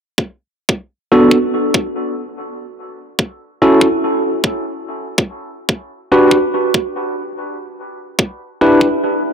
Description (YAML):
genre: glitch hop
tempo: 96 BPM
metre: 4/4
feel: swing 63% on 16ths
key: B minor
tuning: A4 = 440 Hz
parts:
  - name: electronic kick drum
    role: drums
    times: 0.2-8.9 s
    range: none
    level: -15 LUFS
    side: equal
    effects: high-pass filter on kick
  - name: tine electric piano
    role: stabs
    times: 1.1-8.9 s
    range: B3 to B4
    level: -13 LUFS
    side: equal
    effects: sidechain pumping, low-pass filter, dub echo
room: wet lush hall reverb, RT60 2.5 s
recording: dense, heavily limited modern master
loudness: -13 LUFS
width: side -7 dB against mid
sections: 0.2-9.3 A section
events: none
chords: 0.2 Bm7; 2.7 F#m7; 5.2 Gmaj7; 7.7 Em7